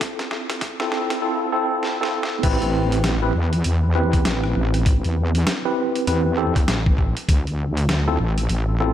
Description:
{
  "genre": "glitch hop",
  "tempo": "99 BPM",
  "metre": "4/4",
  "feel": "swing 61% on 16ths",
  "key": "A minor",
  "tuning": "A4 = 439 Hz",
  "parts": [
    { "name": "tine electric piano", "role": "stabs", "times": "0.0-8.9 s", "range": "C4 to B4", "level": "-23 LUFS", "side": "equal", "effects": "overdrive, fast stereo tremolo, sidechain pumping, analog delay" },
    { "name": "boom bap sampler-style drum kit", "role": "drums", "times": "0.0-8.6 s", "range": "crash cymbal, hi-hat, rim click, snare drum", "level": "-27 LUFS", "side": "equal", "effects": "high-pass filter on hats, studio reverb, high-pass filter on snare, high-pass filter on cymbals" },
    { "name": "electronic kick drum", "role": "drums", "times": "0.0-7.4 s", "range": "none", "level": "-19 LUFS", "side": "equal", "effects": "studio reverb" },
    { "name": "wobble bass", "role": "bass", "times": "2.4-8.9 s", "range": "A1 to E2", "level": "-20 LUFS", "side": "equal", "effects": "chorus" }
  ],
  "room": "moderate lush hall reverb, RT60 2.4 s",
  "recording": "dreamy mix soaked in reverb, high-pass filter",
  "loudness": "-18 LUFS",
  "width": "side -11 dB against mid",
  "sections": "0.0-2.4 A section; 2.4-8.9 B section",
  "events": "build-up 0.0-2.4; drum fill 0.0-1.2, 1.8-2.4; filter sweep on tine electric piano 0.0-2.4; filter sweep 0.0-2.4; drop 2.4-8.9",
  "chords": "0.0 Fmaj7/C; 2.4 Am7; 7.3 Dm7",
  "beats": "| 0.01 0.62 1.22 1.83 | 2.43 3.04 3.65 4.25 | 4.86 5.46 6.07 6.68 | 7.28 7.89 8.49"
}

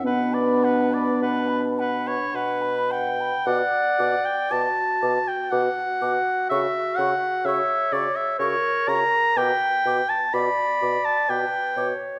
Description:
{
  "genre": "classical, slow romantic movement for wind quintet",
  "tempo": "51-64 BPM",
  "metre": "3/4",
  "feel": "rubato",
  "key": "B minor",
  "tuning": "A4 = 440 Hz",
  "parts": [
    { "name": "mellow hollow silver concert flute", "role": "melody", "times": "0.0-11.9 s", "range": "F#5 to D6", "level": "-34 LUFS", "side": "equal", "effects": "none" },
    { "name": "clear oboe", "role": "second line", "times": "0.0-12.0 s", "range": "B4 to B5", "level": "-25 LUFS", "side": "equal", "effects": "none" },
    { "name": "dark French horn", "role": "accompaniment", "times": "0.0-11.9 s", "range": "B3 to F#4", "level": "-31 LUFS", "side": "equal", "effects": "none" },
    { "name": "mellow clarinet", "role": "accompaniment", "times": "0.1-12.2 s", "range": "D4 to D5", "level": "-32 LUFS", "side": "equal", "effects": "none" },
    { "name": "mellow bassoon", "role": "bass", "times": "0.1-11.9 s", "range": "B2 to C#3", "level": "-31 LUFS", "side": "equal", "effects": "none" }
  ],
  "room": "moderate recital hall reverb, RT60 1.7 s",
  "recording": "none",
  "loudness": "-23 LUFS",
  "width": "mono",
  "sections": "0.0-3.5 A section; 3.5-12.2 B section",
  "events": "none",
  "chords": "0.1 Bm; 6.5 F#/C#; 9.4 Bm",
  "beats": "| 0.06 1.22 2.35 | 3.46 4.51 5.51 | 6.50 7.45 8.39 | 9.36 10.33 11.28"
}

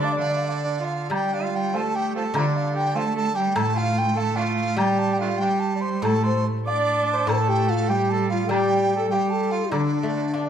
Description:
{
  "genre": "chinese traditional, Chinese chamber ensemble",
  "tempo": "98 BPM",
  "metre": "2/4",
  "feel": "rubato",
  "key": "D yu mode",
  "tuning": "A4 = 440 Hz",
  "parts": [
    { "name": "mellow hollow dizi", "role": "melody", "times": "0.0-10.5 s", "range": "D5 to D6", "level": "-26 LUFS", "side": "right 1 dB", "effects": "none" },
    { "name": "breathy mellow low xiao", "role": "second line", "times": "0.0-0.8, 6.0-10.5 s", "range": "D4 to F5", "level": "-26 LUFS", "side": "left 5 dB", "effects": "none" },
    { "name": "overdriven harmonica", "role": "second line", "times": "0.0-10.5 s", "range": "F3 to D5", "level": "-29 LUFS", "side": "right 4 dB", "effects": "none" },
    { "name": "rich cello", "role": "second line", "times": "0.0-10.5 s", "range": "D3 to D4", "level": "-27 LUFS", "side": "right 5 dB", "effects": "none" },
    { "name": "guzheng", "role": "accompaniment", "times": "0.0-10.5 s", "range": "A2 to D4", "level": "-26 LUFS", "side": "left 1 dB", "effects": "none" },
    { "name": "woodblock", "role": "percussion", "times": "0.5-10.5 s", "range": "none", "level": "-33 LUFS", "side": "left 2 dB", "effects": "none" }
  ],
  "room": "moderate recital hall reverb, RT60 1.6 s",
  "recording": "minimal, uncompressed stereo recording",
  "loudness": "-20 LUFS",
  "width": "side -8 dB against mid",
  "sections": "0.0-1.1 A section; 1.1-10.5 B section",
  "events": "none",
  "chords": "none",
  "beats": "0.48 | 1.12 1.74 | 2.35 2.96 | 3.56 4.17 | 4.78 5.41 | 6.04 6.67 | 7.29 7.90 | 8.51 9.12 | 9.72 10.33"
}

